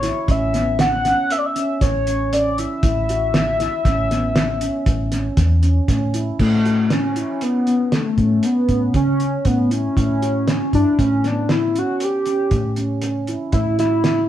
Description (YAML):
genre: progressive instrumental, band music in an uneven meter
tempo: 118 BPM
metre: 7/4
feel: straight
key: A mixolydian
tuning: A4 = 439 Hz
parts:
  - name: pulse-width lead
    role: melody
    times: 0.0-14.3 s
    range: A3 to F#5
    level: -19 LUFS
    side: left 1 dB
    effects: chorus
  - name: handpan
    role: arpeggios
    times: 0.0-14.1 s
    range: B3 to F#4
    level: -26 LUFS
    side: right 2 dB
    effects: none
  - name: hollow-body short-scale fingered electric bass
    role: bass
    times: 0.0-14.3 s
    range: A1 to C#3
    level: -21 LUFS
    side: equal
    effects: none
  - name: cloth-damped thuddy drum kit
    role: drums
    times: 0.0-14.2 s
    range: crash cymbal, hi-hat, kick drum, snare drum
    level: -22 LUFS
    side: right 1 dB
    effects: none
room: moderate studio reverb, RT60 0.7 s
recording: band playing live in one room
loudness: -16 LUFS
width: side -11 dB against mid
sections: 0.0-6.4 A section; 6.4-14.3 B section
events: none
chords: 0.0 A; 13.5 N.C.